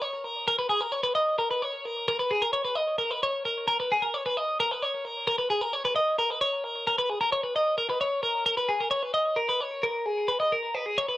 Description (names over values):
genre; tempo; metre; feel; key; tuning
rock; 263 BPM (eighths); 7/8; straight; unclear; A4 = 440 Hz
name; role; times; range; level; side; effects
twelve-string electric guitar; solo; 0.0-11.2 s; G#4 to D#5; -24 LUFS; equal; warbly pitch drift, tape echo
room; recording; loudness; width
light reverb; worn, warbling old tape, cassette tape, warbly pitch drift; -24 LUFS; side -16 dB against mid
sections
0.0-10.1 A section; 10.1-11.2 B section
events
none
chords
none